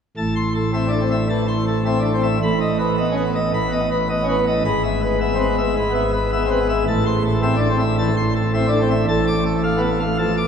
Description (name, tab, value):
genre	classical, organ toccata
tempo	108 BPM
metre	4/4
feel	straight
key	A minor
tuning	A4 = 440 Hz
part	pipe organ, plenum	solo	0.2-10.5 s	G#1 to D6	-17 LUFS	equal	none
room	wet cathedral reverb, RT60 5.4 s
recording	heard from further back in the room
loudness	-17 LUFS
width	side -7 dB against mid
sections	0.2-10.5 A section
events	none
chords	0.2 Am; 2.4 B7/A; 4.7 E/G#; 6.9 Am; 9.1 Dm/A